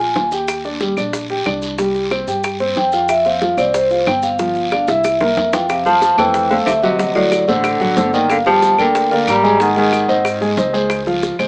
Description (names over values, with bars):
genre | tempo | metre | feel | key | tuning
Afro-Cuban jazz | 184 BPM | 4/4 | straight | unclear | A4 = 440 Hz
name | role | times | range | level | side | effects
vibraphone with soft mallets | melody | 0.0-0.3, 2.8-10.2 s | C5 to Bb5 | -15 LUFS | equal | none
warm grand piano | accompaniment | 0.0-11.5 s | F3 to Ab5 | -18 LUFS | equal | none
upright bass | bass | 0.0-11.5 s | G1 to Ab2 | -28 LUFS | equal | none
bongos | percussion | 0.2-11.4 s | none | -23 LUFS | equal | none
guiro | percussion | 0.2-11.5 s | none | -28 LUFS | equal | none
maracas | percussion | 0.2-11.5 s | none | -36 LUFS | left 1 dB | none
claves | percussion | 0.5-11.5 s | none | -24 LUFS | equal | none
warm tenor saxophone | second line | 5.5-10.2 s | A2 to G3 | -20 LUFS | equal | tape echo
room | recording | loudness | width
moderate club reverb, RT60 0.5 s | small speaker sound | -13 LUFS | side -36 dB against mid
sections
0.0-5.7 A section; 5.7-11.5 B section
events
drum fill 4.7-5.7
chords
0.5 Ebmaj7; 1.8 C5; 3.1 F5; 4.4 G5; 5.0 C7; 5.7 Fmaj7; 7.0 D7; 8.3 Gm7; 9.6 Ab7; 10.9 Dbmaj7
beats
0.15 | 0.48 0.81 1.13 1.46 | 1.79 2.11 2.44 2.76 | 3.09 3.42 3.74 4.07 | 4.39 4.72 5.04 5.37 | 5.70 6.02 6.35 6.67 | 7.00 7.32 7.65 7.97 | 8.30 8.62 8.95 9.28 | 9.60 9.93 10.25 10.58 | 10.90 11.23